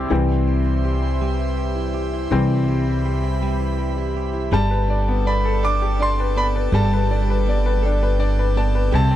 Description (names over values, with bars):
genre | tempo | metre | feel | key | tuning
six-eight pop ballad | 54 BPM (dotted quarters) | 6/8 | straight | C major | A4 = 441 Hz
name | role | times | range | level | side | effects
bright upright piano | accompaniment | 0.0-9.2 s | C3 to A5 | -24 LUFS | left 5 dB | none
airy breathy pad | sustained chords | 0.0-9.2 s | G4 to E6 | -30 LUFS | left 2 dB | chorus
direct-recorded clean electric guitar | arpeggios | 0.0-9.2 s | G3 to A4 | -29 LUFS | right 14 dB | none
upright bass | bass | 0.0-9.2 s | G1 to C2 | -20 LUFS | equal | none
bright concert grand piano | melody | 4.5-9.2 s | A5 to D6 | -24 LUFS | right 2 dB | none
room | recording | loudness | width
studio reverb | dry, close 1970s-style studio recording | -18 LUFS | side -12 dB against mid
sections
0.1-4.5 A section; 4.5-9.2 B section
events
upright piano solo 0.1-4.5; upright piano fill 7.8-8.9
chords
0.1 C; 4.5 Gadd9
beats
| 0.11 1.21 | 2.31 3.41 | 4.52 5.63 | 6.73 7.83 | 8.93